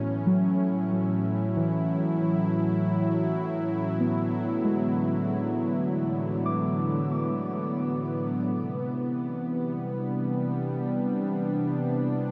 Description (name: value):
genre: ambient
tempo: 70 BPM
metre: 3/4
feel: straight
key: unclear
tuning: A4 = 440 Hz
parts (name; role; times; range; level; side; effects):
- warm analog pad; sustained chords; 0.0-12.3 s; A2 to E4; -29 LUFS; equal; chorus, shimmer reverb
- muted felt-like synth keys; arpeggios; 0.3-8.5 s; E3 to D6; -31 LUFS; equal; chorus, delay
room: wet huge ambient reverb, RT60 8.9 s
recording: none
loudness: -27 LUFS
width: mono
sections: 0.0-8.5 A section; 8.5-12.3 B section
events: none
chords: 0.0 F#m7; 3.3 D69; 8.5 Cmaj9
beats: | 0.75 1.61 2.47 | 3.33 4.19 5.04 | 5.90 6.76 7.63 | 8.52 9.39 10.27 | 11.13 11.99